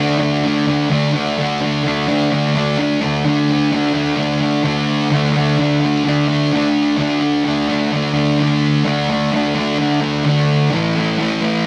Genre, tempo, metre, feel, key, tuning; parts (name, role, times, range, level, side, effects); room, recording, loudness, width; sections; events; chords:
rock; 128 BPM; 4/4; straight; A4 = 439 Hz
thick fuzz guitar; solo; 0.0-11.7 s; A2 to D4; -16 LUFS; equal; distortion
moderate stone room reverb, RT60 1.1 s; rough rehearsal-room recording; -17 LUFS; mono
0.0-3.2 A section; 3.2-11.7 B section
0.0 D5; 10.7 A5